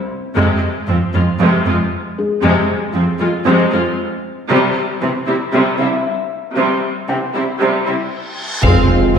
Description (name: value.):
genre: cinematic, hybrid orchestral and electronic film score.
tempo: 116 BPM.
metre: 4/4.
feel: straight.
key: F harmonic minor.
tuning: A4 = 440 Hz.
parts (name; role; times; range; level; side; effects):
felt-muted upright piano; texture; 0.0-9.2 s; Ab3 to G5; -24 LUFS; left 4 dB; ping-pong delay.
clear symphonic viola section; accompaniment; 0.4-9.2 s; C3 to F4; -17 LUFS; equal; none.
clear symphonic cello section; bass; 0.4-9.2 s; F2 to C3; -18 LUFS; right 1 dB; none.
reverse cymbal and impact; sound effects; 8.1-9.2 s; none; -21 LUFS; equal; none.
rich symphonic violin section; melody; 8.6-9.2 s; F5; -21 LUFS; right 2 dB; none.
clear symphonic violin section; second line; 8.6-9.2 s; C4 to Ab4; -23 LUFS; left 4 dB; none.
mellow French horn section; sustained chords; 8.6-9.2 s; C4 to F4; -18 LUFS; right 1 dB; none.
warm symphonic double bass section; bass; 8.6-9.2 s; F1; -18 LUFS; right 1 dB; none.
warm tuba; bass; 8.6-8.7 s; F1; -23 LUFS; right 3 dB; none.
taiko ensemble; drums; 8.6-9.1 s; none; -20 LUFS; left 2 dB; none.
warm trombone section; sustained chords; 8.7-9.2 s; C3 to Ab3; -19 LUFS; right 4 dB; none.
room: wet scoring stage reverb, RT60 1.6 s.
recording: heard from further back in the room, high-pass filter.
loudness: -14 LUFS.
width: side -7 dB against mid.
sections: 0.0-8.6 A section.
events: build-up 0.0-8.6; filter sweep 0.0-8.6; reverse cymbal 8.1-8.6; impact 8.6-9.2.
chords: 0.4 Fm; 4.5 C; 8.6 Fm.